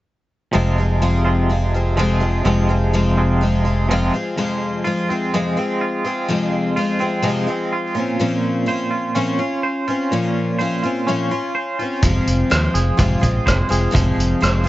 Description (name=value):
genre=folk rock and heartland rock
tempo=125 BPM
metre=4/4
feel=straight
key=F minor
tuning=A4 = 436 Hz
part: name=picked twelve-string acoustic guitar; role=accompaniment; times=0.5-14.7 s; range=F2 to F4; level=-20 LUFS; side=left 2 dB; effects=none
part: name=twangy electric guitar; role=riff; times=0.5-14.7 s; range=F2 to C5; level=-23 LUFS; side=right 3 dB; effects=tremolo
part: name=fingered electric bass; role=bass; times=0.6-4.1, 12.0-14.7 s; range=F1 to Eb2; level=-18 LUFS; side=equal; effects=none
part: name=vintage drum kit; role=drums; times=12.0-14.5 s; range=hi-hat, kick drum, rim click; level=-19 LUFS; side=equal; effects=none
room=light reverb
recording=dark, warm production, nothing above 7.8 kHz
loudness=-16 LUFS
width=side -16 dB against mid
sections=0.5-4.4 A section; 4.4-14.7 B section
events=none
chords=0.5 Fm; 8.0 Bbmadd9; 12.0 Fm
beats=| 0.53 1.01 1.49 1.97 | 2.45 2.93 3.41 3.89 | 4.37 4.85 5.33 5.81 | 6.29 6.76 7.24 7.72 | 8.20 8.68 9.16 9.63 | 10.11 10.59 11.07 11.55 | 12.03 12.51 12.98 13.46 | 13.94 14.42